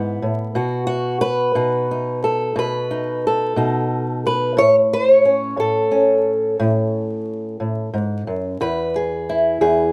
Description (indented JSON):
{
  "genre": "acoustic country blues, solo or duo",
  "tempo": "60 BPM (dotted quarters)",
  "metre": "12/8",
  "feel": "straight",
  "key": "unclear",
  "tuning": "A4 = 440 Hz",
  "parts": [
    { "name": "fingerpicked old ladder-braced acoustic guitar", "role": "solo", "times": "0.0-9.9 s", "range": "E2 to C#5", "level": "-19 LUFS", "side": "equal", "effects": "none" }
  ],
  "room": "little or no reverb",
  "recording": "close, detailed microphones, vinyl crackle",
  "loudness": "-19 LUFS",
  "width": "mono",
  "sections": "0.0-9.9 A section",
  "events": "none",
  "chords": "0.0 E; 0.6 B; 4.6 A; 8.6 E"
}